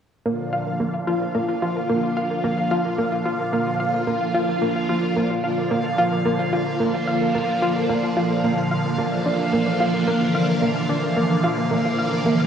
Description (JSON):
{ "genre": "ambient, sequencer-driven space music", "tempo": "110 BPM", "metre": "4/4", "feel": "straight", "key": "Bb lydian", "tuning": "A4 = 439 Hz", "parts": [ { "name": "phased string machine", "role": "sustained chords", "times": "0.3-12.5 s", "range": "Bb2 to F4", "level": "-22 LUFS", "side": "equal", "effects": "ensemble chorus, phaser, shimmer reverb" }, { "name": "analog pluck", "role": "riff", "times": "0.3-12.5 s", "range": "Bb3 to F5", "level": "-23 LUFS", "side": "equal", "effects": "chorus, tape echo, shimmer reverb" }, { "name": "bubbling stepped-filter texture", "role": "texture", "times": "0.4-12.5 s", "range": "F5", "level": "-29 LUFS", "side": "right 2 dB", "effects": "chorus, built-in reverb, shimmer reverb" } ], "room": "wet plate reverb, RT60 2.8 s", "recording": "worn, warbling old tape, cassette tape, warbly pitch drift, studio reverb", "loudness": "-19 LUFS", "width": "side -8 dB against mid", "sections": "0.3-12.5 A section", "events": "none", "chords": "0.3 Bb" }